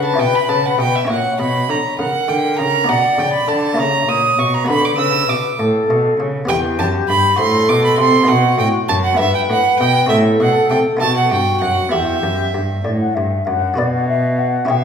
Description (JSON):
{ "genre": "classical, baroque-style sonata movement with continuo", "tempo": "66 BPM (dotted quarters)", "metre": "6/8", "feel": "straight", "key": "B minor, E minor from 6.5 s", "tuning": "A4 = 441 Hz", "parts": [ { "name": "mellow baroque flute", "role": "melody", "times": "0.0-14.8 s", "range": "F#4 to G5", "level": "-19 LUFS", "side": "left 4 dB", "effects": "none" }, { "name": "rich violin", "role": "second line", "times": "0.0-14.8 s", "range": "E5 to E6", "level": "-17 LUFS", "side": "right 3 dB", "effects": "none" }, { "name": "buff-stop harpsichord", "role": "accompaniment", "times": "0.0-14.8 s", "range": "E2 to D5", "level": "-23 LUFS", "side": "left 1 dB", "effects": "none" }, { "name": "warm cello", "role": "bass", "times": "0.0-14.8 s", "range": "E2 to D3", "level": "-20 LUFS", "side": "right 1 dB", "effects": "none" } ], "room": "wet recital hall reverb, RT60 1.4 s", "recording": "recorded in a church or concert hall", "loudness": "-13 LUFS", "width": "side -7 dB against mid", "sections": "0.0-13.8 A section; 13.8-14.8 A section", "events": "none", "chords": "0.2 A9/B; 1.1 F#7b13/A#; 2.9 Bm; 3.8 A#dim; 4.7 Bm; 6.5 Em; 7.4 F#dim/A; 8.3 B; 9.2 Em/G; 10.1 F#dim/A; 11.0 B7; 11.9 Em; 13.8 Bm", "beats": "0.18 | 1.09 1.99 | 2.89 3.79 | 4.68 5.59 | 6.49 7.39 | 8.29 9.19 | 10.10 11.02 | 11.93 12.85 | 13.78 14.69" }